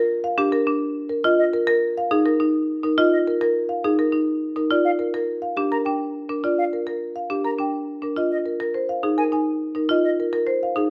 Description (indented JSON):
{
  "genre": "classical, minimalist pattern music",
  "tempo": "104 BPM",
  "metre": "3/4",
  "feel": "straight",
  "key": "Bb mixolydian",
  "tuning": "A4 = 440 Hz",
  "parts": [
    { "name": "marimba with medium hard mallets", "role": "arpeggios", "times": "0.0-10.9 s", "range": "D4 to C5", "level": "-23 LUFS", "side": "equal", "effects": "none" },
    { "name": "marimba with medium mallets", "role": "melody", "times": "0.2-10.9 s", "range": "G4 to Ab5", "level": "-29 LUFS", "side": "equal", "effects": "none" },
    { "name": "silver concert flute", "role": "arpeggios", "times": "1.4-10.1 s", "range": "Eb5 to Bb5", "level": "-29 LUFS", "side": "equal", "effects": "none" }
  ],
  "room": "light reverb",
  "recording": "none",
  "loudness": "-22 LUFS",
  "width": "mono",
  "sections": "0.0-10.9 A section",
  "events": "none",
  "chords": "0.0 Gm (rootless); 1.2 Bbsus4; 4.7 Gm7; 8.2 Bbsus4"
}